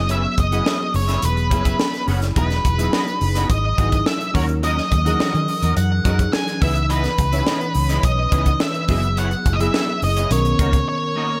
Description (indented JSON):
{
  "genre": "polished 1980s jazz-funk pop",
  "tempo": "106 BPM",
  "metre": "4/4",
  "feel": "straight",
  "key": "unclear",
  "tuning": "A4 = 438 Hz",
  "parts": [
    { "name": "octave-fuzz lead guitar", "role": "melody", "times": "0.0-11.4 s", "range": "B4 to G#5", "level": "-26 LUFS", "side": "equal", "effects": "distortion" },
    { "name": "FM electric piano with soft pad layer", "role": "accompaniment", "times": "0.0-11.4 s", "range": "D#3 to C#5", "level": "-28 LUFS", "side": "equal", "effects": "lush chorus" },
    { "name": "vintage muted fingered electric bass", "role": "bass", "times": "0.0-10.8 s", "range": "E1 to D#3", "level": "-23 LUFS", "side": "equal", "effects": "none" },
    { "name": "electric guitar at the edge of break-up", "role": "riff", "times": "0.1-11.3 s", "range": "A#3 to F#5", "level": "-32 LUFS", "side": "equal", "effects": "ensemble chorus" },
    { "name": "crisp fusion drum kit", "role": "drums", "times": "0.1-10.9 s", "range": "hi-hat, kick drum, snare drum", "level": "-24 LUFS", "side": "equal", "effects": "gated reverb" }
  ],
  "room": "studio ambience",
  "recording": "none",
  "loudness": "-19 LUFS",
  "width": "mono",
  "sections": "0.0-11.4 A section",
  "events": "break 10.9-11.4",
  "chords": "0.0 F#9sus4; 2.4 Emaj9; 4.4 D#m7; 6.6 C#m9; 8.9 F#9sus4; 10.3 Bmaj9"
}